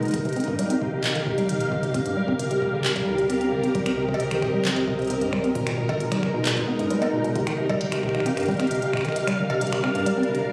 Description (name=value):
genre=IDM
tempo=133 BPM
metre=4/4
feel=straight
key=unclear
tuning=A4 = 440 Hz
part: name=soft string machine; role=sustained chords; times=0.0-10.5 s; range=Eb3 to F5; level=-28 LUFS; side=equal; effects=phaser, ensemble chorus
part: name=deep acid bass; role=arpeggios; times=0.0-10.5 s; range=C2 to C4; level=-28 LUFS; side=equal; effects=delay
part: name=warm sub bass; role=bass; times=0.0-9.1 s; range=Eb1 to D2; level=-38 LUFS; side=equal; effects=none
part: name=organic electronic drum kit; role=drums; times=0.0-10.4 s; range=cowbell, finger snaps, handclaps, hi-hat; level=-33 LUFS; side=equal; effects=tape echo
part: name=bubbling stepped-filter texture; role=texture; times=0.0-10.5 s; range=Bb4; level=-38 LUFS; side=equal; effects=chorus, built-in reverb
part: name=electronic kick drum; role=drums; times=0.1-9.0 s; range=none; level=-34 LUFS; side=equal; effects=none
room=moderate huge ambient reverb, RT60 6.6 s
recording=recorded on a phone in the room, studio reverb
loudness=-24 LUFS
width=mono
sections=0.0-10.5 A section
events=none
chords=0.1 Ebadd9; 1.9 Gm7; 3.7 Cm7; 5.6 Abmadd9; 7.4 Ebadd9; 9.2 Gm7